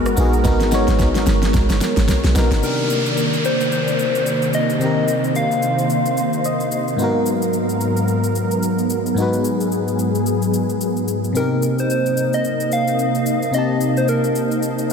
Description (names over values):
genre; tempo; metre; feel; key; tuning
amapiano; 110 BPM; 4/4; swing 58% on 16ths; unclear; A4 = 439 Hz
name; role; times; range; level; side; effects
FM electric piano; accompaniment; 0.0-14.9 s; Ab2 to A5; -22 LUFS; left 1 dB; chorus
warm analog pad; sustained chords; 0.0-14.9 s; Ab2 to Eb5; -21 LUFS; right 1 dB; chorus
deep log drum bass; bass; 0.0-2.6 s; G1 to Cb2; -18 LUFS; right 1 dB; none
smooth R&B drum kit; drums; 0.1-14.9 s; kick drum, rim click, shaker, snare drum; -25 LUFS; equal; none
soft struck synth lead; melody; 2.6-6.7, 11.4-14.6 s; Bb4 to F5; -22 LUFS; left 2 dB; chorus, ping-pong delay
downlifter; sound effects; 2.6-7.0 s; none; -28 LUFS; right 1 dB; none
room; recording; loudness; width
wet huge ambient reverb, RT60 8.2 s; dreamy mix soaked in reverb; -16 LUFS; side -6 dB against mid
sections
0.0-2.6 A section; 2.6-14.9 B section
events
drop 0.0-2.6; drum fill 0.4-2.6; FM electric piano fill 6.2-7.0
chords
0.0 Abm9; 2.6 Cm9; 7.0 Abm9; 11.4 Cm7